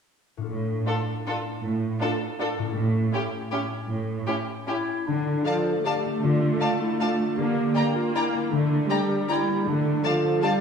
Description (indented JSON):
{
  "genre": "classical, orchestral ballroom waltz",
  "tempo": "157 BPM",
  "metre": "3/4",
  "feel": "uneven beats, rubato",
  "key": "D minor",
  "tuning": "A4 = 444 Hz",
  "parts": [
    { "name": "concert harp", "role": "arpeggios", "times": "0.4-10.6 s", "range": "A2 to Bb4", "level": "-30 LUFS", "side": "left 5 dB", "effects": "none" },
    { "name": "clear symphonic cello section", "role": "bass", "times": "0.5-10.0 s", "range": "A2 to D3", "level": "-29 LUFS", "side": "right 3 dB", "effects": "none" },
    { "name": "bright symphonic violin section", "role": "melody", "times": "0.9-10.5 s", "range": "G4 to Bb5", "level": "-32 LUFS", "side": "left 2 dB", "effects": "none" },
    { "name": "rich symphonic violin section", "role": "second line", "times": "0.9-10.5 s", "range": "E4 to G5", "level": "-33 LUFS", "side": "left 2 dB", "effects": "none" },
    { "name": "rich symphonic viola section", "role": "accompaniment", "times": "0.9-10.6 s", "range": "F3 to D4", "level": "-29 LUFS", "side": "right 3 dB", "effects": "none" },
    { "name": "mellow clarinet", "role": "second line", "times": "4.7-10.6 s", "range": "D4 to A4", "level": "-28 LUFS", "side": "equal", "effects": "none" }
  ],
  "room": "wet scoring stage reverb, RT60 1.7 s",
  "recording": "heard from further back in the room",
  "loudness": "-23 LUFS",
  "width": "side -6 dB against mid",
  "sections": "0.5-5.1 A section; 5.1-10.6 B section",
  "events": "none",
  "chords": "0.5 Dm/A; 2.8 A7; 5.1 Dm; 7.4 Gm/D; 9.7 Dm"
}